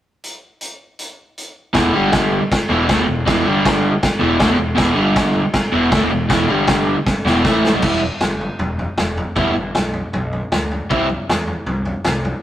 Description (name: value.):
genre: garage rock duo or trio.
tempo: 158 BPM.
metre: 4/4.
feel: straight.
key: E minor.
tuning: A4 = 440 Hz.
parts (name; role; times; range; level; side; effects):
vintage drum kit; drums; 0.2-12.3 s; crash cymbal, hi-hat, kick drum, snare drum, toms; -19 LUFS; equal; none.
crunchy overdriven guitar; riff; 1.7-11.1 s; E2 to E4; -16 LUFS; equal; none.
fuzz picked electric bass; bass; 1.7-12.3 s; E1 to E2; -25 LUFS; equal; overdrive.
room: moderate stone room reverb, RT60 1.4 s.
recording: rough rehearsal-room recording.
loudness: -15 LUFS.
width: side -12 dB against mid.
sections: 0.2-1.8 A section; 1.8-7.8 B section; 7.8-12.4 C section.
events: drum fill 7.1-7.8.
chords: 0.2 N.C.; 1.8 E5; 1.9 G5; 2.4 E5; 3.5 G5; 3.9 E5; 5.0 G5; 5.5 E5; 6.5 G5; 7.0 E5; 7.8 Em; 10.9 C.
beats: | 0.24 0.62 1.00 1.38 | 1.76 2.14 2.52 2.90 | 3.27 3.65 4.03 4.41 | 4.79 5.17 5.55 5.93 | 6.31 6.69 7.07 7.45 | 7.84 8.22 8.60 8.98 | 9.37 9.75 10.14 10.52 | 10.90 11.29 11.67 12.05.